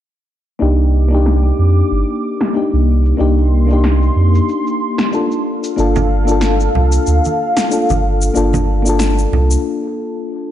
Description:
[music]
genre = sunset chillout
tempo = 93 BPM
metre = 4/4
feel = swing 57% on 16ths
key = unclear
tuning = A4 = 442 Hz
[part]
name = mellow FM electric piano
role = accompaniment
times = 0.6-10.5 s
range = Bb3 to A4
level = -18 LUFS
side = left 3 dB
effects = chorus, auto-pan, cassette tape, low-pass filter, ping-pong delay
[part]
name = lush unison pad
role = sustained chords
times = 0.6-9.6 s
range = Bb3 to D6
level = -21 LUFS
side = left 2 dB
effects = chorus, phaser
[part]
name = warm sub bass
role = bass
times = 0.6-9.6 s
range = G1 to F2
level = -13 LUFS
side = right 1 dB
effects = none
[part]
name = electronic shaker and snare drum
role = drums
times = 0.6-9.6 s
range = none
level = -22 LUFS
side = equal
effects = overdrive, low-pass filter on perc, low-pass filter on snare, low-pass filter on room
[part]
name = congas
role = percussion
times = 6.0-9.5 s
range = none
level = -22 LUFS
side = right 5 dB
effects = none
[sound]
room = light reverb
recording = nothing above 10.6 kHz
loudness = -12 LUFS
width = side -11 dB against mid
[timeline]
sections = 0.6-10.5 A section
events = filter sweep on drum 0.6-10.5; filter sweep on analog synth pad 0.6-10.5; break 9.6-10.5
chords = 0.6 Cm9; 5.5 Gm9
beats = | 0.61 1.26 1.91 2.55 | 3.20 3.84 4.49 5.13 | 5.78 6.42 7.07 7.71 | 8.36 9.00 9.65 10.29

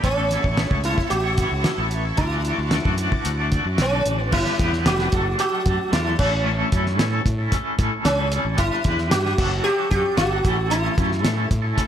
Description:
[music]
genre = psychedelic rock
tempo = 113 BPM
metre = 4/4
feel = straight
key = A mixolydian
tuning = A4 = 440 Hz
[part]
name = sitar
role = melody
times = 0.0-11.5 s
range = C#4 to G4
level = -24 LUFS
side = right 1 dB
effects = digital delay
[part]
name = string machine, violas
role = sustained chords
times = 0.0-4.3 s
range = E5 to D6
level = -38 LUFS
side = right 3 dB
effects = ensemble chorus
[part]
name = twangy electric guitar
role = riff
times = 0.0-11.9 s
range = D3 to D5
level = -25 LUFS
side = equal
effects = tremolo, double-tracked left and right
[part]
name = fuzz fingered electric bass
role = bass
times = 0.0-11.7 s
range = F1 to A2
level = -24 LUFS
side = equal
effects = overdrive
[part]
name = cloth-damped thuddy drum kit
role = drums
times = 0.0-11.9 s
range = crash cymbal, hi-hat, kick drum, snare drum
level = -23 LUFS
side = equal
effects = none
[sound]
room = studio reverb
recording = none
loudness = -19 LUFS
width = side -9 dB against mid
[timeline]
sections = 0.0-4.3 A section; 4.3-11.9 B section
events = none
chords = 0.0 Aadd9; 2.2 Dadd9; 4.3 G; 5.1 D/F#; 6.2 A; 8.6 G; 9.4 D/F#; 10.4 A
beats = | 0.03 0.57 1.11 1.65 | 2.18 2.72 3.25 3.79 | 4.33 4.86 5.39 5.92 | 6.46 6.99 7.52 8.05 | 8.59 9.12 9.65 10.18 | 10.71 11.24 11.78

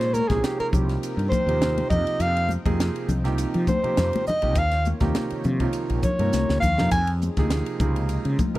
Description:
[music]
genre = electric jazz fusion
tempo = 102 BPM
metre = 4/4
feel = swing 54% on 16ths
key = F minor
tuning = A4 = 439 Hz
[part]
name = breathy soprano saxophone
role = melody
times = 0.0-7.1 s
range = G4 to Ab5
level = -24 LUFS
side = equal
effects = slapback echo
[part]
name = warm concert grand piano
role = accompaniment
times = 0.0-8.6 s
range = C3 to Bb4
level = -29 LUFS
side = right 4 dB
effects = none
[part]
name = warm analog pad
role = sustained chords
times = 0.0-8.6 s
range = C3 to G5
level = -35 LUFS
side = left 1 dB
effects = chorus
[part]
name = mellow fretless electric bass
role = bass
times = 0.0-8.6 s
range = Bb1 to F3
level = -24 LUFS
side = equal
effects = none
[part]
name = crisp fusion drum kit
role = drums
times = 0.0-8.6 s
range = hi-hat, kick drum, ride cymbal, snare drum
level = -28 LUFS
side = equal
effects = none
[part]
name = congas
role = percussion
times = 0.1-8.5 s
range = none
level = -28 LUFS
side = left 3 dB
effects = none
[sound]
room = light reverb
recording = dry, close 1970s-style studio recording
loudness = -20 LUFS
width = side -16 dB against mid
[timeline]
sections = 0.0-8.6 A section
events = soprano saxophone solo 0.0-8.6; drum fill 6.2-6.9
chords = 0.0 Bbm11; 0.7 Cm7; 1.9 Fm9; 4.6 Eb9; 6.9 Fm7; 7.8 Dbmaj9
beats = 0.44 1.03 1.62 | 2.21 2.80 3.39 3.98 | 4.57 5.16 5.75 6.34 | 6.93 7.52 8.11

